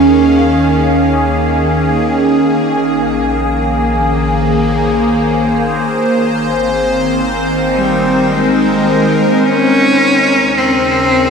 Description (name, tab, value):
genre	ambient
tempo	53 BPM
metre	3/4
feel	straight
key	unclear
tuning	A4 = 439 Hz
part	evolving wavetable pad	sustained chords	0.0-11.3 s	Db3 to F5	-12 LUFS	equal	phaser, built-in reverb
part	round analog bass	bass	0.0-11.3 s	Ab1 to Eb2	-23 LUFS	equal	none
part	organ-like drone	drone	0.0-11.3 s	Eb3 to Bb3	-19 LUFS	left 2 dB	ensemble chorus, built-in reverb
part	wind-like tuned noise texture	texture	0.0-9.5 s	Ab5	-24 LUFS	left 1 dB	built-in reverb
part	bright cello	melody	7.7-11.3 s	G3 to Db4	-12 LUFS	equal	diffuse ambient delay
room	wet huge ambient reverb, RT60 8.2 s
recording	none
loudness	-10 LUFS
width	side -6 dB against mid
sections	0.0-9.4 A section; 9.4-11.3 B section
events	fade-in on synth texture 0.0-9.4; fade-out on analog synth bass 0.0-9.4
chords	0.0 Eb9sus4; 2.6 Bbm9; 6.0 Abadd9; 9.4 Eb9sus4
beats	0.39 1.52 | 2.65 3.78 4.91 | 6.04 7.18 8.31 | 9.44 10.57